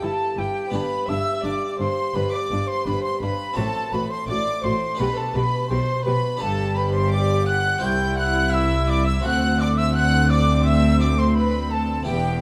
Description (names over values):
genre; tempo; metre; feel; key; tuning
classical, baroque-style concerto movement with solo episodes; 85 BPM; 4/4; straight; unclear; A4 = 442 Hz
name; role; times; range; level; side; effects
silver concert flute; melody; 0.0-12.4 s; G5 to G6; -29 LUFS; equal; none
warm chamber violin section; melody; 0.0-12.4 s; G5 to G6; -34 LUFS; equal; none
dark chamber violin section; second line; 0.0-12.4 s; G4 to G5; -31 LUFS; equal; none
dark chamber viola section; accompaniment; 0.0-12.4 s; B3 to G4; -31 LUFS; equal; none
harpsichord; accompaniment; 0.0-12.4 s; C2 to C5; -33 LUFS; equal; none
rich chamber double bass section; bass; 0.0-12.4 s; E1 to D2; -27 LUFS; equal; none
warm chamber cello section; bass; 0.0-12.4 s; C2 to B2; -28 LUFS; equal; none
room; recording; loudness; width
moderate recital hall reverb, RT60 1.7 s; none; -22 LUFS; mono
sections
0.0-12.4 A section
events
none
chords
0.0 Em/G; 0.7 G; 3.6 F#dim/A; 5.0 G/B; 6.4 G; 7.8 C; 9.2 D7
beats
0.02 | 0.73 1.44 2.15 2.86 | 3.58 4.29 5.00 5.71 | 6.42 7.12 7.83 8.53 | 9.24 9.95 10.66 11.36 | 12.07